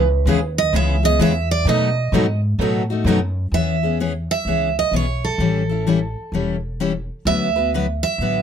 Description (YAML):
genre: acoustic string swing (jazz manouche)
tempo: 129 BPM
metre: 4/4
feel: swing 63% on 8ths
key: E major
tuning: A4 = 441 Hz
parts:
  - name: picked steel-string acoustic guitar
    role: melody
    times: 0.0-8.4 s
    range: A4 to E5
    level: -21 LUFS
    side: right 7 dB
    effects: none
  - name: picked steel-string acoustic guitar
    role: accompaniment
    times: 0.0-8.4 s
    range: B2 to B4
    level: -20 LUFS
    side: left 6 dB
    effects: none
  - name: upright bass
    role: bass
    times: 0.0-8.4 s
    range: E1 to B2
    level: -22 LUFS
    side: equal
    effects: none
  - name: picked steel-string acoustic guitar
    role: accompaniment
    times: 0.3-3.2 s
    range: B2 to A4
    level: -24 LUFS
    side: right 6 dB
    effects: none
room: light reverb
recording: close, detailed microphones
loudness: -17 LUFS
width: side -8 dB against mid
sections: 0.0-3.5 A section; 3.5-8.4 B section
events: steel-string acoustic guitar solo 0.0-3.5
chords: 0.0 C#m7; 1.7 B7; 3.5 E6; 5.4 A7; 7.3 D6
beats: 0.27 0.73 1.20 | 1.67 2.13 2.60 3.06 | 3.53 4.00 4.46 4.93 | 5.40 5.86 6.33 6.80 | 7.26 7.73 8.20